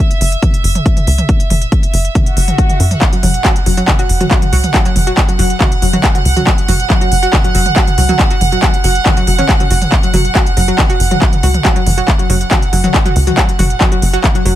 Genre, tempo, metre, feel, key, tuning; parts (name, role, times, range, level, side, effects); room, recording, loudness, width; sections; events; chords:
driving peak-time techno; 139 BPM; 4/4; straight; A4 = 440 Hz
techno drum kit; drums; 0.0-14.5 s; handclaps, hi-hat, toms; -16 LUFS; equal; overdrive
rich chamber string section; texture; 0.0-14.6 s; E5 to F#5; -20 LUFS; right 5 dB; sidechain pumping
tight sequencer bass; bass; 0.2-14.6 s; F#1 to F#2; -13 LUFS; equal; sidechain pumping
electronic kick drum; drums; 0.4-14.3 s; -13 LUFS; equal; overdrive
swell; sound effects; 2.3-3.0 s; -23 LUFS; left 2 dB
analog pluck; riff; 3.1-14.5 s; F#3 to F#4; -18 LUFS; left 1 dB; chorus, overdrive, sidechain pumping, ping-pong delay
digital ambience; -10 LUFS; side -12 dB against mid
0.0-14.6 A section
swell 2.3-3.0
0.0 F#5